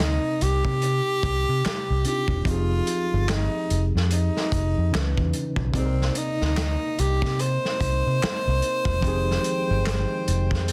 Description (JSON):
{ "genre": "R&B, neo-soul", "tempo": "73 BPM", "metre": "4/4", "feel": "swing 60% on 16ths", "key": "C minor", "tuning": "A4 = 441 Hz", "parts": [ { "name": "mellow tenor saxophone", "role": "melody", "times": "0.0-10.7 s", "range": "C4 to C5", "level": "-29 LUFS", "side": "equal", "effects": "slapback echo" }, { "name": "tine electric piano", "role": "accompaniment", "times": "0.0-10.7 s", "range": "C3 to D5", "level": "-34 LUFS", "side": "equal", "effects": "overdrive" }, { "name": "vintage muted fingered electric bass", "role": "bass", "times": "0.0-10.7 s", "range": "E1 to C3", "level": "-26 LUFS", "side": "equal", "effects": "none" }, { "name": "crunchy breakbeat drum kit", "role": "drums", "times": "0.0-10.7 s", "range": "handclaps, hi-hat, kick drum, snare drum", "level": "-31 LUFS", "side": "equal", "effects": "none" }, { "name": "tonewheel organ", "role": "sustained chords", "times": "5.7-10.7 s", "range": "C3 to G5", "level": "-39 LUFS", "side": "equal", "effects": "slow rotary speaker" } ], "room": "light reverb", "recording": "dense, heavily limited modern master", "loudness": "-24 LUFS", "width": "mono", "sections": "0.0-10.7 A section", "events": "none", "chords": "0.0 Cm7; 2.5 Fm9; 4.9 Dbm7; 5.7 Cm7; 9.0 Fm9", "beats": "0.81 1.63 | 2.45 3.27 4.10 4.92 | 5.74 6.56 7.38 8.21 | 9.03 9.85 10.67" }